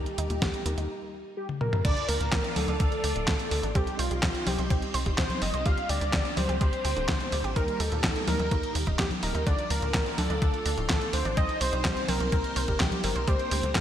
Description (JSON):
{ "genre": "italo disco", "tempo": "126 BPM", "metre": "4/4", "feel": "straight", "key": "unclear", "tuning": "A4 = 440 Hz", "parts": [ { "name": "wide unison lead", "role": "melody", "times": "0.0-13.8 s", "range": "F4 to F5", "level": "-31 LUFS", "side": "equal", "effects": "vintage 12-bit sampler grit, digital delay" }, { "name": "string machine, full ensemble", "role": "sustained chords", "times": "0.0-13.8 s", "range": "F3 to D5", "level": "-36 LUFS", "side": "equal", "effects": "phaser, ensemble chorus" }, { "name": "analog pluck", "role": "arpeggios", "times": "0.0-13.8 s", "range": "Eb2 to C5", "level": "-38 LUFS", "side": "right 3 dB", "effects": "chorus, vintage 12-bit sampler grit, digital delay" }, { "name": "tight sequencer bass", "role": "bass", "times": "0.0-13.8 s", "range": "D1 to Eb2", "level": "-31 LUFS", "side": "equal", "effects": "tube saturation" }, { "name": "clean 12-bit digital drum machine", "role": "drums", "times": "0.1-13.8 s", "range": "congas, crash cymbal, handclaps, hi-hat, snare drum, toms", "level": "-30 LUFS", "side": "equal", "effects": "gated reverb" }, { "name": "electronic kick drum", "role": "drums", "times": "0.4-13.8 s", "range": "none", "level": "-29 LUFS", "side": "equal", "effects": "none" } ], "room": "light reverb", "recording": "bright 1980s-style digital production", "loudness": "-25 LUFS", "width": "side -10 dB against mid", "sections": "0.0-1.8 A section; 1.8-13.8 B section", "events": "drum fill 1.5-1.8", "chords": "0.0 Eb; 1.8 Dm; 3.8 Cm; 5.7 Gm/D; 7.6 Eb; 9.5 Dm; 11.4 Cm; 13.3 Gm/D", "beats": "0.42 0.90 1.37 | 1.85 2.32 2.80 3.28 | 3.75 4.23 4.71 5.18 | 5.66 6.13 6.61 7.09 | 7.56 8.04 8.51 8.99 | 9.47 9.94 10.42 10.89 | 11.37 11.85 12.32 12.80 | 13.28 13.75" }